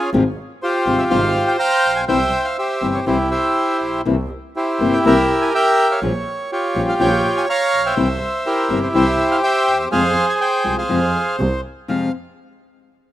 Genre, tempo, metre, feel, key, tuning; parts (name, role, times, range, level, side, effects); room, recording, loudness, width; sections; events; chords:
tango; 123 BPM; 4/4; rubato; F harmonic minor; A4 = 440 Hz
bandoneon; melody; 0.0-12.1 s; Db4 to Bb5; -17 LUFS; right 1 dB
nylon-string guitar; accompaniment; 0.1-12.1 s; F2 to F4; -19 LUFS; left 4 dB
clear double bass; bass; 0.1-12.1 s; G1 to F2; -23 LUFS; right 1 dB
light reverb, small room ambience; rough home demo mix; -15 LUFS; side -13 dB against mid
0.0-11.9 A section; 11.9-13.1 B section
0.1 Fmadd9/Ab; 2.1 C; 6.0 Gm7b5/Bb; 8.0 C; 9.9 Fm; 11.4 N.C.; 11.9 Fm